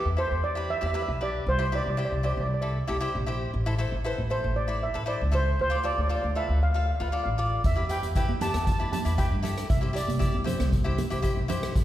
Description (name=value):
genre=calypso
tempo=117 BPM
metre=4/4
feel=straight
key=C major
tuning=A4 = 440 Hz
part: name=steel pan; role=melody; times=0.0-10.7 s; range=B4 to A5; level=-30 LUFS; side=right 2 dB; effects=none
part: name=cavaquinho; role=accompaniment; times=0.0-11.7 s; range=E4 to F5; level=-32 LUFS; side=left 1 dB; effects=none
part: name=upright bass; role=bass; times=0.1-11.8 s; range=A1 to G2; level=-28 LUFS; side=equal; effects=none
part: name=street-band drum kit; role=drums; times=7.6-11.8 s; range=hi-hat, kick drum, rim click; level=-28 LUFS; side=equal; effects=none
part: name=congas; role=percussion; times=8.3-11.6 s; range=none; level=-34 LUFS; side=right 3 dB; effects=none
room=moderate concert hall reverb, RT60 2.2 s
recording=heard from further back in the room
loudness=-24 LUFS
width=side -13 dB against mid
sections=0.0-11.8 A section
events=none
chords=0.0 Em7; 1.5 C; 3.5 Am; 5.6 Dm; 7.6 Em; 9.7 Cadd9